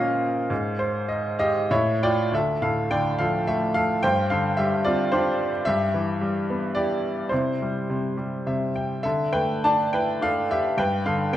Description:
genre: classical, lyrical solo piano.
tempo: 92-112 BPM.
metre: 3/4.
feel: rubato.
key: D dorian.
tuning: A4 = 441 Hz.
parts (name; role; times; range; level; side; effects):
bright baby grand piano; solo; 0.0-11.4 s; D2 to A5; -21 LUFS; equal; none.
room: moderate scoring stage reverb, RT60 1.5 s.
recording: minimal, uncompressed stereo recording.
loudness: -21 LUFS.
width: side -12 dB against mid.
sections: 0.0-2.3 A section; 2.3-11.4 B section.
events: grand piano fill 0.5-2.3, 8.2-9.0.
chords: 0.0 Bbm; 0.5 Bbm11/Ab; 1.7 A7; 2.3 Dm; 4.0 Gsus4; 5.7 Em/G; 7.3 C; 9.0 Dsus2; 10.8 Gadd9.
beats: | 0.51 1.09 1.71 | 2.32 2.90 3.47 | 4.03 4.58 5.12 | 5.66 6.21 6.76 | 7.32 7.88 8.45 | 9.04 9.64 10.21 | 10.77 11.32.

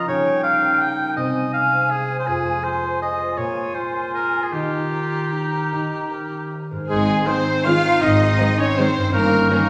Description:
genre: classical, orchestral ballroom waltz.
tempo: 144-176 BPM.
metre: 3/4.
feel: rubato.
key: Ab major.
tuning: A4 = 438 Hz.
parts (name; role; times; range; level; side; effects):
clear clarinet; second line; 0.0-9.7 s; Eb4 to F4; -30 LUFS; equal; none.
large flute ensemble; second line; 0.0-9.7 s; Ab4 to Bb5; -30 LUFS; equal; none.
warm oboe; second line; 0.0-9.7 s; G4 to Db6; -26 LUFS; equal; none.
concert harp; arpeggios; 0.0-9.7 s; F2 to Eb5; -31 LUFS; equal; none.
warm French horn section; sustained chords; 0.1-9.7 s; F3 to F4; -28 LUFS; equal; none.
rich studio violin section; melody; 6.9-9.7 s; Ab4 to F5; -30 LUFS; equal; none.
bright trombone section; sustained chords; 6.9-9.7 s; Eb3 to Db4; -30 LUFS; equal; none.
clear trumpet; stabs; 6.9-9.7 s; Ab4 to F5; -24 LUFS; equal; none.
rich studio cello section; bass; 6.9-9.7 s; Ab3 to F4; -27 LUFS; equal; none.
rich studio double bass section; bass; 6.9-9.4 s; G1 to Ab1; -25 LUFS; equal; none.
rich studio violin section; second line; 7.3-9.6 s; Bb3 to Db4; -33 LUFS; equal; none.
warm studio viola section; accompaniment; 7.3-9.6 s; Eb3 to Ab3; -30 LUFS; equal; none.
room: wet scoring stage reverb, RT60 1.7 s.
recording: studio ambience.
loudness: -20 LUFS.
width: mono.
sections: 0.0-6.9 A section; 6.9-9.7 B section.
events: none.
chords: 0.1 Eb7/Db; 1.2 Ab/C; 2.3 Fm; 3.4 Bbm7; 4.5 Eb; 6.9 Ab; 9.1 Eb7/G.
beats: | 0.07 0.43 0.81 | 1.17 1.53 1.91 | 2.27 2.63 3.01 | 3.37 3.74 4.13 | 4.52 4.92 5.33 | 5.73 6.12 6.52 | 6.90 7.27 7.66 | 8.02 8.39 8.78 | 9.14 9.51.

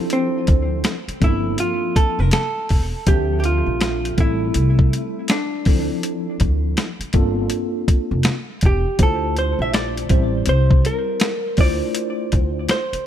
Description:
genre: hip hop, jazz-hop.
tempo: 81 BPM.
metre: 4/4.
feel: swing 62% on 16ths.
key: D minor.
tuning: A4 = 441 Hz.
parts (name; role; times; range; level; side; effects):
mellow tine electric piano; accompaniment; 0.0-12.8 s; E3 to E5; -24 LUFS; equal; medium stereo tremolo.
vintage hollow-body jazz guitar; melody; 0.1-13.1 s; C4 to E5; -23 LUFS; right 1 dB; tape echo.
boom bap sampler-style drum kit; drums; 0.1-13.1 s; hi-hat, kick drum, snare drum; -18 LUFS; equal; none.
upright bass; bass; 0.5-13.0 s; E1 to D2; -21 LUFS; equal; none.
room: little or no reverb.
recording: none.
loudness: -17 LUFS.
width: side -10 dB against mid.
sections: 0.0-13.1 A section.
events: hollow-body jazz guitar solo 0.0-13.1.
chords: 0.0 Dm9; 1.2 Gm11; 3.1 Dm9; 4.2 Am7; 5.7 Dm9; 7.1 Gm11; 9.0 Dm9; 10.1 Am7; 11.6 Dm9.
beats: | 0.10 0.84 1.58 2.33 | 3.07 3.81 4.55 5.29 | 6.03 6.77 7.51 8.25 | 8.99 9.73 10.47 11.21 | 11.96 12.70.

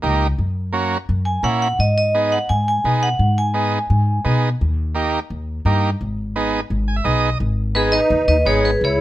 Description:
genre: latin.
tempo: 171 BPM.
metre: 4/4.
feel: straight.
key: G# minor.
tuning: A4 = 440 Hz.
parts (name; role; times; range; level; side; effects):
combo organ; accompaniment; 0.0-8.7 s; A#3 to G#5; -21 LUFS; right 3 dB; none.
upright bass; bass; 0.0-9.0 s; G#1 to B2; -20 LUFS; left 1 dB; none.
vibraphone with hard mallets; melody; 1.3-4.4, 7.8-9.0 s; G#4 to G#5; -18 LUFS; equal; none.
musette accordion; second line; 7.7-9.0 s; B3 to G#4; -25 LUFS; right 2 dB; none.
room: little or no reverb.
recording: close, detailed microphones.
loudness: -16 LUFS.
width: side -14 dB against mid.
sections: 0.0-7.4 A section; 7.4-9.0 B section.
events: transistor combo organ fill 6.7-7.4.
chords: 0.4 F#; 1.8 G#m; 4.6 D#; 6.0 G#m.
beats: 0.03 | 0.38 0.73 1.08 1.43 | 1.78 2.14 2.49 2.84 | 3.19 3.54 3.90 4.25 | 4.60 4.95 5.30 5.65 | 6.01 6.36 6.71 7.06 | 7.41 7.76 8.12 8.47 | 8.82.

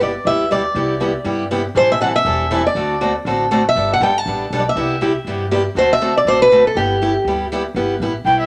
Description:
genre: acoustic string swing (jazz manouche).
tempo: 240 BPM.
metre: 4/4.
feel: swing 57% on 8ths.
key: G major.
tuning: A4 = 440 Hz.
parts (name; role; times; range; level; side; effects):
picked steel-string acoustic guitar; melody; 0.0-7.5 s; G4 to A5; -18 LUFS; equal; none.
picked steel-string acoustic guitar; accompaniment; 0.0-8.4 s; C3 to A4; -22 LUFS; equal; none.
upright bass; bass; 0.0-8.5 s; E1 to G2; -29 LUFS; equal; none.
warm violin; second line; 8.3-8.5 s; E5 to G5; -15 LUFS; equal; none.
room: moderate studio ambience, RT60 0.5 s.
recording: none.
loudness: -17 LUFS.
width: mono.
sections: 0.0-7.8 A section.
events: none.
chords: 0.0 G6; 0.8 Cmaj7; 1.8 Am7; 2.8 D7; 3.8 Gadd9; 4.8 Cmaj7; 5.8 D7; 6.8 G6.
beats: 0.00 0.25 0.50 | 0.76 1.00 1.26 1.51 | 1.76 2.01 2.26 2.51 | 2.76 3.01 3.26 3.51 | 3.76 4.01 4.26 4.51 | 4.76 5.01 5.26 5.51 | 5.76 6.01 6.26 6.51 | 6.76 7.00 7.25 7.50 | 7.75 8.00 8.25.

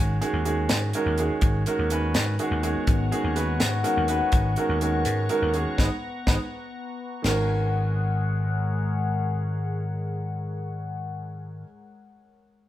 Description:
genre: electric jazz fusion.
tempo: 82 BPM (dotted quarters).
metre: 6/8.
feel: straight.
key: G# minor.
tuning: A4 = 440 Hz.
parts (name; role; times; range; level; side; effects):
bright grand piano; accompaniment; 0.0-11.6 s; D#3 to B4; -27 LUFS; right 3 dB; none.
vintage slap bass; bass; 0.0-11.6 s; G#1 to G#2; -26 LUFS; left 1 dB; none.
tight funk drum kit; drums; 0.2-7.4 s; crash cymbal, hi-hat, kick drum, snare drum; -25 LUFS; equal; none.
evolving wavetable pad; sustained chords; 2.5-10.9 s; G#3 to C#6; -32 LUFS; left 6 dB; phaser, built-in reverb.
room: moderate stone room reverb, RT60 0.9 s.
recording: band playing live in one room.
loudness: -22 LUFS.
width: side -13 dB against mid.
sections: 0.0-7.2 A section; 7.2-10.2 B section.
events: band accent 5.8-7.2; drum fill 6.5-7.2.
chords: 0.0 G#m11; 7.2 G#9sus4.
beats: 0.69 | 1.42 2.15 | 2.87 3.60 | 4.33 5.06 | 5.79 6.52 | 7.25 7.98 | 8.71 9.44.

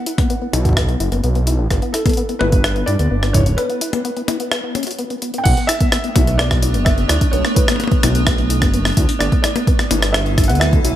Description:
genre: IDM.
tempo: 128 BPM.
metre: 4/4.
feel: straight.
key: B minor.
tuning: A4 = 440 Hz.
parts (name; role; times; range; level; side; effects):
felt-muted upright piano; melody; 0.0-11.0 s; A4 to G5; -24 LUFS; equal; ping-pong delay.
deep acid bass; arpeggios; 0.0-10.9 s; B3 to F#4; -24 LUFS; left 3 dB; analog chorus, digital delay.
jungle sampler-style drum kit; drums; 0.1-10.9 s; crash cymbal, hi-hat, rim click, toms; -21 LUFS; left 2 dB; small room ambience.
electronic kick drum; drums; 0.2-10.8 s; none; -17 LUFS; equal; small room ambience.
dark detuned saw bass; bass; 0.5-10.9 s; E1 to G2; -18 LUFS; equal; none.
icy glass pad; sustained chords; 6.1-11.0 s; G3 to B4; -24 LUFS; right 2 dB; chorus, built-in reverb, sidechain pumping.
room: light reverb, digital ambience.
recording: bright 1980s-style digital production.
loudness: -14 LUFS.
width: side -12 dB against mid.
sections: 0.0-5.5 A section; 5.5-11.0 B section.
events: break 3.6-5.5.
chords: 0.0 B5; 1.7 G6; 5.5 Bm7; 9.2 G6.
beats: 0.30 0.77 1.24 | 1.71 2.17 2.64 3.11 | 3.58 4.05 4.52 4.99 | 5.46 5.92 6.39 6.86 | 7.33 7.80 8.27 8.74 | 9.21 9.67 10.14 10.61.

